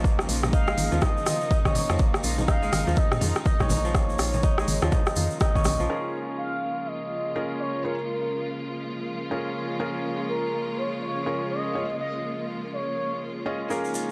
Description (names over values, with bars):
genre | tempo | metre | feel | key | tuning
afro house | 123 BPM | 4/4 | swing 60% on 16ths | Bb minor | A4 = 440 Hz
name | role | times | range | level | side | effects
warm studio string section | sustained chords | 0.0-14.1 s | Db3 to F4 | -35 LUFS | equal | sidechain pumping, low-pass filter
kora | arpeggios | 0.0-7.3, 13.7-14.1 s | F3 to F4 | -33 LUFS | equal | sidechain pumping, tape echo
woody FM bass | bass | 0.0-5.9 s | Ab1 to Bb2 | -31 LUFS | equal | tube saturation, sidechain pumping
electronic kick drum | drums | 0.0-5.6 s | none | -26 LUFS | equal | overdrive, small room ambience
egg shaker | percussion | 0.0-5.9, 13.7-14.1 s | none | -42 LUFS | equal | none
afro-pop drum kit | drums | 0.2-5.8 s | hi-hat, rim click | -32 LUFS | equal | small room ambience
congas | percussion | 0.4-5.8 s | none | -33 LUFS | equal | none
expressive portamento lead | melody | 0.5-13.4 s | Bb4 to F5 | -34 LUFS | equal | subtle chorus, tape echo
felt-muted upright piano | stabs | 5.9-14.1 s | Db4 to Eb5 | -34 LUFS | equal | vintage 12-bit sampler grit, sidechain pumping, tape echo
room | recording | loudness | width
light reverb, small room ambience | dry, gritty hardware recording, cassette tape | -26 LUFS | mono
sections
0.0-5.9 A section; 5.9-14.1 B section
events
band accent 5.4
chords
0.0 Bbm7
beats
| 0.04 0.53 1.02 1.51 | 1.99 2.48 2.97 3.46 | 3.94 4.43 4.92 5.41 | 5.90 6.38 6.87 7.36 | 7.85 8.34 8.82 9.31 | 9.80 10.29 10.78 11.26 | 11.75 12.24 12.73 13.21 | 13.70